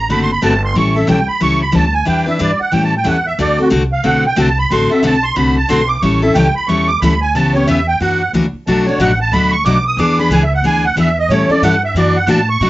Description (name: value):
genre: acoustic string swing (jazz manouche)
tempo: 182 BPM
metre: 4/4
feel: swing 61% on 8ths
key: A mixolydian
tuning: A4 = 442 Hz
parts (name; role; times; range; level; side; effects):
- musette accordion; melody; 0.0-12.7 s; F#4 to D#6; -16 LUFS; right 3 dB; cassette tape
- upright bass; bass; 0.0-12.7 s; F#1 to B2; -18 LUFS; equal; none
- picked steel-string acoustic guitar; accompaniment; 0.1-12.7 s; B2 to B4; -14 LUFS; left 2 dB; cassette tape
room: moderate small room reverb, RT60 0.5 s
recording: home recording on cassette, nothing above 7.8 kHz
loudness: -11 LUFS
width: side -16 dB against mid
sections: 0.0-12.7 A section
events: accordion solo 0.0-12.7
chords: 0.0 D7; 0.7 A7; 2.1 Em7; 2.7 A7; 3.4 D7; 6.0 A7; 7.3 C#m7b5; 8.0 F#aug7; 8.7 Bm7; 10.0 E7; 11.3 A7; 12.0 F#7alt